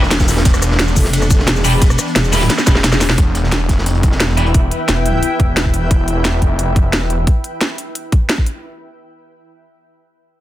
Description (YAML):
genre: dark technical drum and bass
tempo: 176 BPM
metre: 4/4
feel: straight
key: E phrygian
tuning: A4 = 438 Hz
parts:
  - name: swarming drone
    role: sustained chords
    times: 0.0-5.9 s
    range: E3 to E4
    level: -24 LUFS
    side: left 1 dB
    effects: built-in reverb, sidechain pumping
  - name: snarling distorted saw bass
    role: bass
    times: 0.0-1.0, 3.2-7.3 s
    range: E1 to F1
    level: -17 LUFS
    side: equal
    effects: distortion, tube saturation
  - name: crunchy breakbeat drum kit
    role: drums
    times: 0.0-4.5 s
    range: hi-hat, snare drum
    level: -25 LUFS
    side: equal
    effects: high-pass filter on hats, small room ambience, high-pass filter on snare, high-pass filter on room
  - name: drum and bass drum kit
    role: drums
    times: 0.0-8.5 s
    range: cabasa, hi-hat, ride cymbal, rim click, snare drum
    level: -17 LUFS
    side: equal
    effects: small room ambience
  - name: electronic kick drum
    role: drums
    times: 0.2-8.4 s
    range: none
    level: -13 LUFS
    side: equal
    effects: small room ambience
  - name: metallic wobble bass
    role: bass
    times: 1.0-3.2 s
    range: E1 to F1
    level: -15 LUFS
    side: equal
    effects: chorus
  - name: distorted electric guitar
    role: stabs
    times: 1.6-4.4 s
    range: G3 to B4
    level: -22 LUFS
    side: right 1 dB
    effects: overdrive, low-pass filter, digital delay
  - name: granular cloud pad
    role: texture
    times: 4.3-7.3 s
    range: E4 to G5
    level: -23 LUFS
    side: left 1 dB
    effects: built-in reverb, sidechain pumping
room: light reverb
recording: dense, heavily limited modern master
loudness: -12 LUFS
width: side -14 dB against mid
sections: 0.0-3.2 A section; 3.2-8.6 B section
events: drop 0.0-3.2; drum fill 2.5-3.2; kick drops out 2.8-3.2; filter sweep on detuned saw bass 3.2-7.3; filter sweep on synth drone 3.2-5.9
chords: 0.0 E5; 3.2 Em